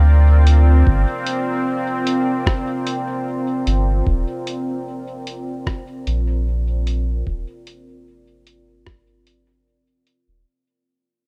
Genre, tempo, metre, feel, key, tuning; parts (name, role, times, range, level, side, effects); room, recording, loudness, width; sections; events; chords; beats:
ambient dub; 75 BPM; 4/4; straight; A4 = 439 Hz
deep dark ambient pad; sustained chords; 0.0-10.5 s; C4 to D5; -26 LUFS; equal; chorus, built-in reverb
soft dub sub bass; bass; 0.0-10.4 s; Eb1 to D2; -16 LUFS; equal
lo-fi sampler-style drum kit; drums; 0.5-10.2 s; hi-hat, rim click; -29 LUFS; equal; dub echo
electronic kick drum; drums; 0.9-9.0 s; -23 LUFS; equal
little or no reverb; dark, warm production, faint mains hum; -19 LUFS; mono
0.0-10.5 A section
fade-out 1.9-10.5
0.0 Gm7; 4.1 Ebsus2 (rootless)
0.07 | 0.87 1.67 2.47 3.27 | 4.07 4.87 5.67 6.47 | 7.27 8.07 8.87 9.67